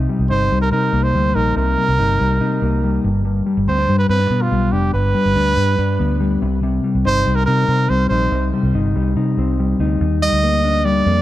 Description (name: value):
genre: jangly indie pop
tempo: 142 BPM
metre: 4/4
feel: straight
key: unclear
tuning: A4 = 438 Hz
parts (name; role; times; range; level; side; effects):
- mellow electric guitar; arpeggios; 0.0-11.2 s; G2 to Eb4; -19 LUFS; left 4 dB; none
- vintage muted fingered electric bass; bass; 0.0-11.2 s; F1 to C3; -19 LUFS; right 1 dB; none
- warm trumpet; melody; 0.3-11.2 s; F4 to Eb5; -20 LUFS; right 3 dB; none
room: light reverb, small room ambience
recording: dark, warm production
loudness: -15 LUFS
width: side -14 dB against mid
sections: 0.0-10.0 A section; 10.0-11.2 B section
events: none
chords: 0.0 Cm7; 3.0 G; 6.4 Cm; 10.0 Ebmaj7